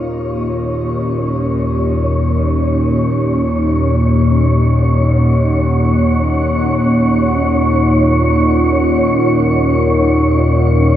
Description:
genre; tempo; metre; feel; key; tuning
dark ambient drone; free time; none; none; Eb minor; A4 = 440 Hz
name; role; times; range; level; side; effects
deep dark ambient pad; sustained chords; 0.0-11.0 s; Bb3 to Ab5; -26 LUFS; left 1 dB; chorus, built-in reverb, shimmer reverb
overtone-sweeping drone; drone; 0.0-11.0 s; Eb2 to Bb2; -13 LUFS; equal; chorus, built-in reverb
wind-like tuned noise texture; texture; 0.0-11.0 s; Db4 to Db5; -18 LUFS; right 1 dB; built-in reverb, lush chorus, shimmer reverb
room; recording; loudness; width
wet huge ambient reverb, RT60 7.8 s; dreamy mix soaked in reverb; -12 LUFS; side -11 dB against mid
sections
0.0-11.0 A section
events
fade-in on ambient pad 0.0-11.0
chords
0.0 Ebm7

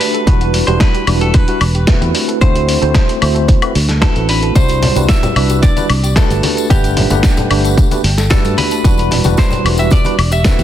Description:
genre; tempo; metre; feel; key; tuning
nu-disco, nu disco; 112 BPM; 4/4; straight; E minor; A4 = 440 Hz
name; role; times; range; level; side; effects
direct-recorded clean electric guitar; melody; 0.0-10.6 s; G4 to E5; -22 LUFS; equal; lush chorus, digital delay
bright tine electric piano; accompaniment; 0.0-10.6 s; G3 to F#5; -18 LUFS; right 1 dB; medium stereo tremolo, sidechain pumping
soft round pluck; arpeggios; 0.0-10.6 s; D4 to A4; -26 LUFS; right 3 dB; chorus, sidechain pumping, digital delay
dusty soul sampler-style drum kit; drums; 0.0-10.6 s; hi-hat, snare drum, woodblock; -19 LUFS; left 1 dB; small room ambience
fingered electric bass; bass; 0.3-10.6 s; E1 to G2; -15 LUFS; equal; tube saturation, sidechain pumping
electronic kick drum; drums; 0.3-10.6 s; none; -12 LUFS; equal; small room ambience
tambourine and congas; percussion; 4.6-10.6 s; none; -22 LUFS; left 2 dB; none
room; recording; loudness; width
little or no reverb; dense, heavily limited modern master; -10 LUFS; side -11 dB against mid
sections
0.0-10.6 A section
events
none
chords
0.3 Em9; 2.1 D13; 4.6 Cmaj9#11; 6.4 Gmaj9; 8.8 Em9

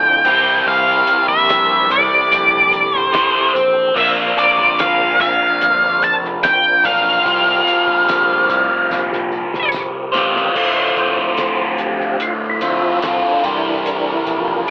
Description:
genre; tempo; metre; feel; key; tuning
psychedelic rock; 73 BPM; 4/4; straight; unclear; A4 = 440 Hz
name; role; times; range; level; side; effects
octave-fuzz lead guitar; melody; 0.0-9.7 s; D5 to A5; -13 LUFS; equal; distortion, slapback echo
percussive tonewheel organ; sustained chords; 0.0-14.7 s; E3 to E5; -24 LUFS; equal; chorus vibrato, fast rotary speaker
overdriven electric guitar; riff; 0.0-14.7 s; D2 to C5; -17 LUFS; equal; phaser
cloth-damped thuddy drum kit; drums; 0.2-14.7 s; crash cymbal, hi-hat, kick drum, snare drum; -25 LUFS; equal; none
growling fingered electric bass; bass; 0.3-14.6 s; D1 to D2; -30 LUFS; equal; overdrive
tambourine; percussion; 0.3-14.5 s; none; -38 LUFS; right 1 dB; none
pedal harmonium; drone; 10.6-14.7 s; D2 to A2; -27 LUFS; equal; none
room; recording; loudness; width
light reverb, studio reverb; telephone sound; -12 LUFS; side -28 dB against mid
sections
0.0-10.6 A section; 10.6-14.7 B section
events
drum fill 8.9-10.6; tonewheel organ solo 10.6-14.7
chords
0.3 C7; 4.0 Bbadd9; 7.3 C7sus4; 10.6 Dm7; 13.4 C7

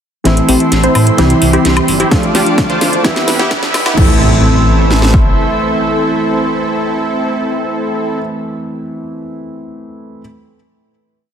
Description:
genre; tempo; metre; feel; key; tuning
EDM, festival progressive house; 129 BPM; 4/4; straight; A minor; A4 = 435 Hz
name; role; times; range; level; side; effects
dark baby grand piano; accompaniment; 0.2-10.2 s; E3 to F4; -17 LUFS; equal; sidechain pumping, digital delay
lush unison pad; sustained chords; 0.3-8.2 s; A3 to D6; -20 LUFS; equal; chorus, vintage 12-bit sampler grit, sidechain pumping
supersaw stab; riff; 0.3-8.2 s; B3 to C5; -16 LUFS; right 1 dB; sidechain pumping, low-pass filter, digital delay
wide detuned saw bass; bass; 0.3-5.3 s; D1 to A2; -15 LUFS; equal; chorus, sidechain pumping
house drum kit; drums; 0.3-4.1 s; crash cymbal, hi-hat, snare drum, woodblock; -17 LUFS; left 1 dB; overdrive
riser and impact; sound effects; 2.0-8.2 s; none; -24 LUFS; equal; none
house drum kit; drums; 2.1-5.2 s; kick drum, snare drum; -13 LUFS; equal; overdrive
room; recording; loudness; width
moderate lush hall reverb, RT60 2.3 s; dense, heavily limited modern master, high-pass filter; -10 LUFS; side -8 dB against mid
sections
0.3-4.0 build; 4.0-7.7 final chord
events
build-up 0.3-4.0; drum fill 0.3-4.0; filter sweep on supersaw synth 0.3-4.0; filter sweep 0.3-4.0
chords
0.3 Am; 1.2 C; 2.1 Dm; 3.0 Em; 4.0 Am

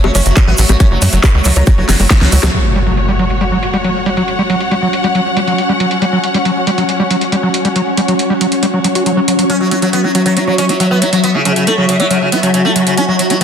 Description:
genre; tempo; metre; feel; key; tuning
psychedelic trance; 138 BPM; 4/4; straight; F# phrygian; A4 = 440 Hz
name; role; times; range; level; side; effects
sitar; melody; 0.0-2.5, 9.5-13.4 s; C#3 to C#4; -17 LUFS; right 1 dB; phaser, sidechain pumping, tape echo
swarming drone; sustained chords; 0.0-13.4 s; F#3 to F#4; -18 LUFS; equal; built-in reverb, phaser, sidechain pumping
overdriven acid bass; riff; 0.0-13.4 s; F#3 to G4; -16 LUFS; equal; auto-pan, sidechain pumping, ping-pong delay
tight sequencer bass; bass; 0.0-2.5 s; F#1 to F#2; -12 LUFS; equal; none
big-room dance drum kit; drums; 0.0-13.4 s; bongos, crash cymbal, handclaps, hi-hat, snare drum; -18 LUFS; equal; overdrive, low-pass filter on hats, small room ambience, low-pass filter on perc, low-pass filter on snare, low-pass filter on cymbals
dark symphonic string section; texture; 0.0-13.4 s; F#4 to F#5; -19 LUFS; left 1 dB; sidechain pumping
egg shaker; percussion; 0.2-2.5 s; none; -24 LUFS; right 4 dB; none
electronic kick drum; drums; 0.4-2.2 s; none; -10 LUFS; equal; small room ambience
impact; sound effects; 2.5-4.3 s; none; -18 LUFS; equal; none
room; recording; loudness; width
moderate lush hall reverb, RT60 1.7 s, digital ambience; dense, heavily limited modern master; -10 LUFS; side -8 dB against mid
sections
0.0-2.5 A section; 2.5-13.4 B section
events
drop 0.0-2.5; drum fill 1.9-2.5; band accent 2.4; impact 2.5-4.3; filter sweep on drum 2.5-13.4; filter sweep on acid bass 2.5-13.4; filter sweep on synth drone 2.5-13.4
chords
0.0 F#5

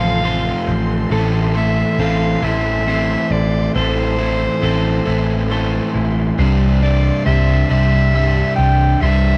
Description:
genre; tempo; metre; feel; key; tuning
post-rock; 46 BPM (dotted quarters); 6/8; straight; unclear; A4 = 440 Hz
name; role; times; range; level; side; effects
breathy soprano saxophone; melody; 0.0-9.4 s; C5 to G5; -24 LUFS; equal; none
dark symphonic string section; sustained chords; 0.0-9.4 s; G4 to C6; -34 LUFS; equal; none
twelve-string electric guitar; arpeggios; 0.0-9.4 s; C2 to E4; -31 LUFS; equal; none
twelve-string electric guitar; arpeggios; 0.0-9.4 s; A4 to E5; -31 LUFS; equal; none
overdriven semi-hollow guitar; riff; 0.0-9.4 s; C2 to A4; -21 LUFS; equal; none
hollow-body short-scale picked electric bass; bass; 0.0-9.4 s; A1 to C2; -20 LUFS; equal; none
room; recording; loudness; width
light reverb; band playing live in one room; -16 LUFS; mono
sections
0.0-9.4 A section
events
none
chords
0.0 F/A; 1.1 Am; 6.4 Cadd9

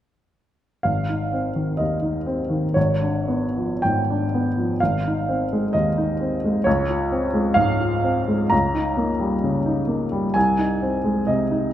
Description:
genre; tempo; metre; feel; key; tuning
classical, romantic character piece for solo piano; 54-68 BPM; 2/4; rubato; Ab major; A4 = 440 Hz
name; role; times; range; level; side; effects
warm baby grand piano; solo; 0.8-11.7 s; Ab1 to Bb5; -19 LUFS; equal; none
room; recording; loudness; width
moderate recital hall reverb, RT60 1.5 s; none; -19 LUFS; side -11 dB against mid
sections
0.9-11.7 A section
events
none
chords
0.9 Ab; 2.8 Abdim7; 4.8 Ab; 6.7 Dbmaj7; 8.5 Eb7/Db; 10.4 Ab/C

